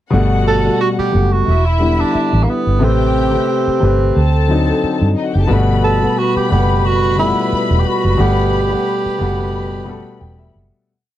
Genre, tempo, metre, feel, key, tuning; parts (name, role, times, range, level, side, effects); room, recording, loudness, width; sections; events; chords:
lush 1970s-style soul; 89 BPM; 4/4; swing 54% on 16ths; G major; A4 = 439 Hz
warm studio string section; second line; 0.1-10.5 s; Eb4 to B5; -23 LUFS; left 4 dB
warm grand piano; accompaniment; 0.1-10.9 s; B2 to G5; -18 LUFS; left 3 dB
vintage muted fingered electric bass; bass; 0.1-10.7 s; E1 to G2; -15 LUFS; equal
warm tenor saxophone; melody; 0.5-10.2 s; Bb3 to A4; -19 LUFS; right 5 dB
little or no reverb; dry, close 1970s-style studio recording; -12 LUFS; side -13 dB against mid
0.1-10.9 A section
fade-out 8.2-10.9; grand piano fill 9.9-10.9
0.1 Gmaj9; 1.5 Em7; 2.8 Am9; 4.2 D7b9; 5.5 Gmaj9